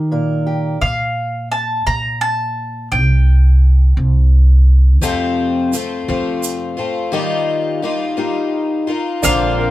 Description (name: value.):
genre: indie folk with a building arrangement.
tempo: 57 BPM (dotted quarters).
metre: 6/8.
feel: straight.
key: unclear.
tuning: A4 = 440 Hz.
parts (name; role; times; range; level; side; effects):
fingerpicked acoustic archtop guitar; accompaniment; 0.0-0.8 s; Bb2 to Bb4; -20 LUFS; right 2 dB; none.
upright bass; bass; 0.0-9.7 s; Bb1 to Eb3; -14 LUFS; equal; none.
mandolin; melody; 0.8-3.9, 9.2-9.7 s; F5 to Bb5; -19 LUFS; equal; none.
picked twelve-string acoustic guitar; accompaniment; 5.0-9.7 s; F2 to F4; -17 LUFS; left 3 dB; none.
tube shaker; percussion; 5.0-9.4 s; none; -24 LUFS; right 5 dB; none.
clear upright piano; arpeggios; 9.2-9.7 s; D4 to Bb4; -20 LUFS; right 2 dB; none.
room: moderate small room ambience, RT60 0.5 s.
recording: band playing live in one room.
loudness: -13 LUFS.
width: side -15 dB against mid.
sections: 0.8-9.2 A section.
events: none.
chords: 0.0 Eb; 0.8 Bb5; 2.9 C5; 5.0 F; 7.1 Ebadd9.